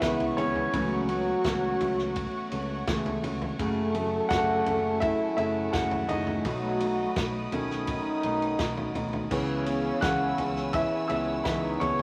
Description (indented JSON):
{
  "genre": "piano-driven pop",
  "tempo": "84 BPM",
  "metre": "4/4",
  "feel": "straight",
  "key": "C# minor",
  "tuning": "A4 = 438 Hz",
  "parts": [
    { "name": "warm French horn section", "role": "second line", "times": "0.0-11.8 s", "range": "C#3 to A4", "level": "-33 LUFS", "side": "equal", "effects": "none" },
    { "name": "warm concert grand piano", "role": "accompaniment", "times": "0.0-12.0 s", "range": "D#3 to F#6", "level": "-33 LUFS", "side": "equal", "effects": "none" },
    { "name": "rich studio string section", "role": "sustained chords", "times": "0.0-12.0 s", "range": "A3 to E6", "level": "-40 LUFS", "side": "equal", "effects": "none" },
    { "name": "fingerpicked steel-string acoustic guitar", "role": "riff", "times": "0.0-12.0 s", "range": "F#2 to G#4", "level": "-35 LUFS", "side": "equal", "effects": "none" },
    { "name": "modern bright picked electric bass", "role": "bass", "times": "0.0-12.0 s", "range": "F#1 to C#2", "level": "-39 LUFS", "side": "equal", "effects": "none" },
    { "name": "natural country drum kit", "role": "drums", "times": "0.0-12.0 s", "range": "crash cymbal, kick drum, ride cymbal, snare drum, toms", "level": "-37 LUFS", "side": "equal", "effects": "none" }
  ],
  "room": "moderate club reverb, RT60 0.6 s",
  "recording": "vinyl crackle",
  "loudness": "-28 LUFS",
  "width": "mono",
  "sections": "0.0-9.3 A section; 9.3-12.0 A section",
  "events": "grand piano solo 0.0-9.3, 9.3-12.0",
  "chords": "0.0 C#m7; 0.7 A6/C#; 3.6 F#madd9; 6.5 B7; 9.3 C#m7"
}